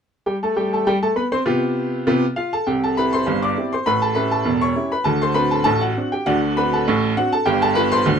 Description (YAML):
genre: ragtime piano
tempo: 100 BPM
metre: 2/4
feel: swing 55% on 16ths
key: C major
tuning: A4 = 440 Hz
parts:
  - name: bright upright piano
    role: solo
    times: 0.3-8.2 s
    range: E1 to D6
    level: -17 LUFS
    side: equal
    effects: none
room: light reverb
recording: close, detailed microphones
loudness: -17 LUFS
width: side -7 dB against mid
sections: 0.3-2.7 A section; 2.7-8.2 B section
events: none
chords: 0.3 C5; 1.5 G7/C; 2.7 C; 3.9 A7; 5.1 D7; 7.5 G7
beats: | 0.27 0.87 | 1.47 2.07 | 2.67 3.27 | 3.87 4.47 | 5.07 5.67 | 6.26 6.86 | 7.46 8.06